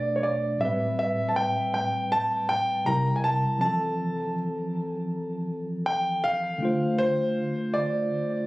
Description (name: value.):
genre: R&B.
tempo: 80 BPM.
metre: 4/4.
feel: straight.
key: unclear.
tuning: A4 = 440 Hz.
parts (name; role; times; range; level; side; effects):
clear grand piano; melody; 0.0-8.5 s; C5 to Bb5; -26 LUFS; equal; tape echo.
tine electric piano; accompaniment; 0.0-8.5 s; A2 to C5; -28 LUFS; equal; medium stereo tremolo.
room: light reverb, small room ambience.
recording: recorded on a phone in the room, studio reverb, compression.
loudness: -24 LUFS.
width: side -19 dB against mid.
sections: 0.0-8.5 A section.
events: none.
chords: 0.0 Bm7; 0.6 Am9; 2.9 C7; 3.6 Fmaj7; 6.6 Dm7.